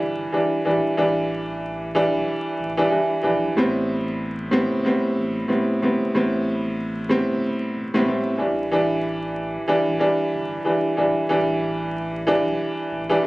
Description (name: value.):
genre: hip hop, boom-bap hip-hop.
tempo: 93 BPM.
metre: 4/4.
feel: swing 57% on 16ths.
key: unclear.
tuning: A4 = 440 Hz.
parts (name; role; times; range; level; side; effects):
clear upright piano; accompaniment; 0.0-13.3 s; A2 to D4; -20 LUFS; equal; high-pass filter, low-pass filter.
warm sub bass; bass; 0.0-13.2 s; E1 to B1; -36 LUFS; equal; none.
room: light reverb, small room reverb.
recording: recorded on a phone in the room, club reverb, vinyl crackle, compression.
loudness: -20 LUFS.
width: side -20 dB against mid.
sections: 0.0-13.3 A section.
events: none.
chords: 0.0 Em7; 3.6 Am9; 8.4 Em7.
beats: 0.33 | 0.98 1.62 2.27 2.91 | 3.56 4.20 4.85 5.49 | 6.14 6.78 7.43 8.07 | 8.72 9.36 10.01 10.65 | 11.30 11.95 12.59 13.23.